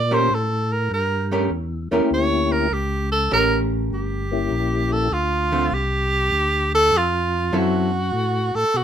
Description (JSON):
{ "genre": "jazz", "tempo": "100 BPM", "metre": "4/4", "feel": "swing 67% on 8ths", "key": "unclear", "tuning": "A4 = 441 Hz", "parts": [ { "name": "bright tenor saxophone", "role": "melody", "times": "0.0-8.8 s", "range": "F4 to D5", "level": "-21 LUFS", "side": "right 2 dB", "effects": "none" }, { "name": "tonewheel organ", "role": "bass", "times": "0.0-8.8 s", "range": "G1 to B2", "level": "-24 LUFS", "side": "left 1 dB", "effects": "overdrive, chorus vibrato, slow rotary speaker" }, { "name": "archtop guitar, miked and amplified", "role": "accompaniment", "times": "0.1-7.9 s", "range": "D3 to Bb4", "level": "-22 LUFS", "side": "right 1 dB", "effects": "none" }, { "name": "percussive tonewheel organ", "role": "melody", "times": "1.9-5.1 s", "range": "Bb3 to G4", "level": "-22 LUFS", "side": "left 5 dB", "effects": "slow rotary speaker, chorus vibrato" } ], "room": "light reverb", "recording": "minimal, uncompressed stereo recording", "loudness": "-18 LUFS", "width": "side -9 dB against mid", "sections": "0.0-8.8 A section", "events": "tenor saxophone solo 0.0-8.8", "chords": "0.3 A7b9; 5.1 Dm7; 7.5 F#m7b5" }